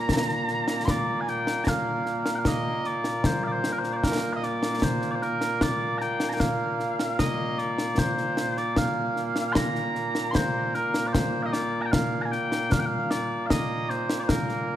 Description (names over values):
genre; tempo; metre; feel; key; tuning
scottish traditional, Scottish pipe music; 76 BPM; 3/4; straight; Bb major; A4 = 440 Hz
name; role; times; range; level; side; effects
mellow small bagpipes; melody; 0.0-14.8 s; Bb2 to C6; -26 LUFS; right 1 dB; none
concert snare drum and concert bass drum; drums; 0.1-14.6 s; none; -27 LUFS; left 1 dB; none
room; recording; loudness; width
moderate concert hall reverb, RT60 2.4 s; none; -24 LUFS; side -11 dB against mid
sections
0.9-10.3 A section; 10.3-14.8 B section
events
none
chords
none